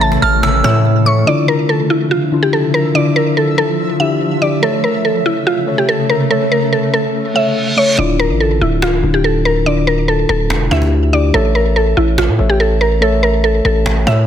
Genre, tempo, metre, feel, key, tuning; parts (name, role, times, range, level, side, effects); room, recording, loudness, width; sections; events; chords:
hip hop, trap; 143 BPM; 4/4; half-time; D harmonic minor; A4 = 440 Hz
mallet-like synth pluck; melody; 0.0-14.3 s; E4 to E6; -15 LUFS; right 1 dB; chorus, tape echo
delicate synth tine bell; second line; 0.0-1.2 s; E6 to A6; -18 LUFS; right 5 dB; chorus, tape echo
muted felt-like synth keys; accompaniment; 0.0-14.3 s; D3 to E5; -18 LUFS; left 3 dB; chorus
granular cloud pad; sustained chords; 0.0-8.0 s; C#3 to E5; -20 LUFS; equal; built-in reverb
distorted 808-style bass; bass; 0.0-1.2, 8.0-14.3 s; C#1 to A2; -15 LUFS; equal; distortion
cajon; drums; 0.0-1.1, 8.8-14.2 s; -22 LUFS; equal
reverse cymbal; sound effects; 7.3-8.0 s; -20 LUFS; right 2 dB
light reverb; dense, heavily limited modern master; -11 LUFS; side -9 dB against mid
0.0-1.3 A section; 1.3-8.0 B section; 8.0-14.3 C section
reverse cymbal 7.3-8.0; hi-hats muted 8.0-14.3
0.0 A; 1.3 Dmadd9; 4.6 A; 8.0 Dmadd9; 11.3 A